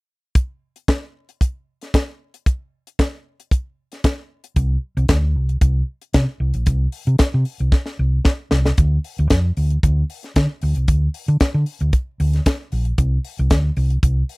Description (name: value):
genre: disco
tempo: 114 BPM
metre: 4/4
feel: straight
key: unclear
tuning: A4 = 442 Hz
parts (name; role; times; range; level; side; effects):
- tight funk drum kit; drums; 0.4-14.4 s; hi-hat, kick drum, snare drum; -17 LUFS; equal; none
- hollow-body short-scale fingered electric bass; bass; 4.6-14.2 s; Bb1 to D3; -17 LUFS; equal; none
room: little or no reverb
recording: dry, close 1970s-style studio recording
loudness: -17 LUFS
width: side -26 dB against mid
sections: 0.4-8.8 A section; 8.8-14.4 B section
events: drum fill 7.7-8.8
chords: none